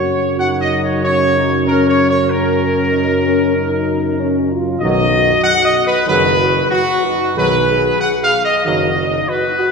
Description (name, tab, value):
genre	classical, ceremonial fanfare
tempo	95 BPM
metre	4/4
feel	straight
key	unclear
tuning	A4 = 440 Hz
part	warm trumpet section	melody	0.0-9.7 s	F#4 to F#5	-15 LUFS	right 1 dB	none
part	mellow French horn section	sustained chords	0.0-9.7 s	Db4 to Ab4	-19 LUFS	left 4 dB	none
part	warm trombone section	sustained chords	0.0-8.9 s	Db3 to Gb3	-22 LUFS	right 1 dB	none
part	warm tuba	bass	0.0-9.2 s	F#1 to Gb2	-20 LUFS	right 2 dB	none
room	wet church reverb, RT60 3.2 s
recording	heard from further back in the room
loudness	-12 LUFS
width	side -5 dB against mid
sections	0.0-9.7 A section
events	none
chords	0.0 Gb; 4.8 B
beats	0.39 1.02 1.66 | 2.28 2.91 3.54 4.18 | 4.81 5.45 6.08 6.71 | 7.38 8.02 8.66 9.30